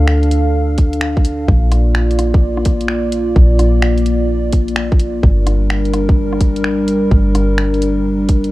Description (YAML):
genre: future garage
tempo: 128 BPM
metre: 4/4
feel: swing 65% on 16ths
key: unclear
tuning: A4 = 440 Hz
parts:
  - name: dark analog pad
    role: sustained chords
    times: 0.0-8.5 s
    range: G3 to F5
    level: -17 LUFS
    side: equal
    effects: chorus, sidechain pumping
  - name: soft 808-style bass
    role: bass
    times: 0.0-8.5 s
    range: G1 to D2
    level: -16 LUFS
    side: equal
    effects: sidechain pumping
  - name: garage drum kit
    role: drums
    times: 0.1-8.5 s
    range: finger snaps, hi-hat, rim click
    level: -23 LUFS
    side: equal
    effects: small room ambience
  - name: electronic kick drum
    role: drums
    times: 0.8-8.4 s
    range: none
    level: -12 LUFS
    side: equal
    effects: small room ambience
room: light reverb, digital ambience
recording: cassette tape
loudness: -12 LUFS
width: side -18 dB against mid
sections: 0.0-8.5 A section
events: none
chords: 0.0 Dm; 1.5 Bb; 5.2 Gm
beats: 0.08 0.55 1.02 | 1.49 1.96 2.42 2.89 | 3.36 3.83 4.30 4.77 | 5.24 5.71 6.17 6.64 | 7.11 7.58 8.05